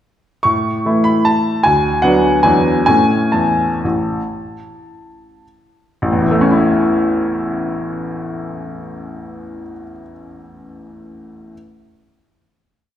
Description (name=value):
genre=classical, piano waltz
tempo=100-161 BPM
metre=3/4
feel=rubato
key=A major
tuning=A4 = 442 Hz
part: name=clear baby grand piano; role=solo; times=0.4-11.5 s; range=A1 to C#6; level=-14 LUFS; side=equal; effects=none
room=wet recital hall reverb, RT60 1.5 s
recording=heard from further back in the room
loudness=-13 LUFS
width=side -10 dB against mid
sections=0.5-6.0 A section; 6.0-9.4 final chord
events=slowing down 2.2-6.0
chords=0.5 A; 1.6 Bm/D; 2.4 E9; 2.9 A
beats=| 0.45 0.85 1.26 | 1.64 2.03 2.44 | 2.88 3.34 3.84 | 4.33 4.86 5.42 | 6.01 6.57 7.15 | 7.72 8.27 8.85